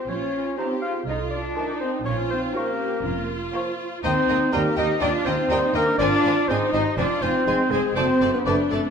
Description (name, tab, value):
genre	cinematic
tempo	122 BPM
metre	4/4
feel	straight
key	unclear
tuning	A4 = 436 Hz
part	vibraphone with soft mallets	melody	0.0-8.9 s	C4 to A4	-30 LUFS	right 2 dB	none
part	warm clarinet	second line	0.0-8.8 s	Ab4 to F5	-25 LUFS	left 2 dB	none
part	warm symphonic viola section	accompaniment	0.0-8.9 s	C4 to G4	-30 LUFS	right 2 dB	none
part	warm French horn section	sustained chords	0.0-8.8 s	Ab3 to F4	-29 LUFS	left 3 dB	none
part	warm chamber cello section	bass	0.0-8.9 s	Ab3 to F4	-28 LUFS	right 1 dB	none
part	warm chamber double bass section	bass	0.1-8.8 s	F1 to Eb2	-29 LUFS	right 4 dB	none
part	warm chamber violin section	melody	0.6-8.8 s	F5 to Bb5	-35 LUFS	left 3 dB	none
part	rich chamber violin section	second line	0.6-8.8 s	A3 to F5	-31 LUFS	left 2 dB	none
part	silver concert flute	second line	0.6-8.5 s	A5 to D6	-36 LUFS	equal	none
part	warm bassoon	accompaniment	0.6-8.6 s	Eb3 to A3	-34 LUFS	right 2 dB	none
room	moderate scoring stage reverb, RT60 2.0 s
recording	minimal, uncompressed stereo recording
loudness	-20 LUFS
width	side -6 dB against mid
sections	0.0-8.9 A section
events	none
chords	0.1 Bbm; 1.1 Adim/C; 2.1 Bbm; 4.0 Eb; 6.0 Ab; 7.0 Fm; 8.0 D7/F#